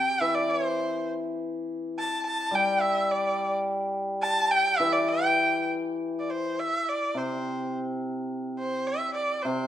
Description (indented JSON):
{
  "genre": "chinese traditional, Chinese chamber ensemble",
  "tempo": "104 BPM",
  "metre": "2/4",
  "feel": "rubato",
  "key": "unclear",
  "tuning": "A4 = 441 Hz",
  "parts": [
    { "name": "clear erhu", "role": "melody", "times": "0.0-9.7 s", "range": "C5 to A5", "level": "-26 LUFS", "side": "right 1 dB", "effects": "none" },
    { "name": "hammered dulcimer", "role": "accompaniment", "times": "0.2-9.7 s", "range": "C3 to G3", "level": "-29 LUFS", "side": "left 1 dB", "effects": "none" }
  ],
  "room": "moderate recital hall reverb, RT60 1.4 s",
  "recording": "minimal, uncompressed stereo recording",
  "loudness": "-25 LUFS",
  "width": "side -11 dB against mid",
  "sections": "0.0-6.0 A section; 6.0-9.7 B section",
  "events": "none",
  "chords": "none"
}